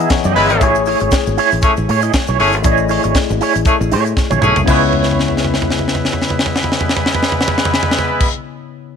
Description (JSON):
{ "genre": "disco", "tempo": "118 BPM", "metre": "4/4", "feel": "swing 56% on 16ths", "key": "C# minor", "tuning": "A4 = 440 Hz", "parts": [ { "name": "barky tine electric piano", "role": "accompaniment", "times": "0.0-9.0 s", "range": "C#3 to F#5", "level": "-20 LUFS", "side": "left 13 dB", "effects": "overdrive, phaser" }, { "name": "electric guitar with an envelope filter", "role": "accompaniment", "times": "0.0-8.3 s", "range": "E4 to E5", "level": "-18 LUFS", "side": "right 13 dB", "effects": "tremolo" }, { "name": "fingered electric bass", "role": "bass", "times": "0.0-8.3 s", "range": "G1 to A2", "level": "-19 LUFS", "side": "equal", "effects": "none" }, { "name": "tight funk drum kit", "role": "drums", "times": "0.1-8.3 s", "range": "crash cymbal, hi-hat, kick drum, snare drum, toms", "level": "-17 LUFS", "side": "equal", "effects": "none" }, { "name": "egg shaker", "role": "percussion", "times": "0.1-8.3 s", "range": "none", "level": "-35 LUFS", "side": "left 14 dB", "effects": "none" }, { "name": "clear horn section", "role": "stabs", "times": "0.4-8.3 s", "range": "G#3 to C#5", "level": "-18 LUFS", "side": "left 1 dB", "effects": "none" } ], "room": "light reverb, small room ambience", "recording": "1960s-style stereo with parts hard left and right", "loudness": "-12 LUFS", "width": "side -7 dB against mid", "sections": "0.0-4.7 A section; 4.7-8.7 B section", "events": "tine electric piano fill 0.0-0.6; drum fill 4.2-4.7, 4.9-8.2", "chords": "0.0 Emaj7; 0.6 Amaj7; 4.7 C#m7" }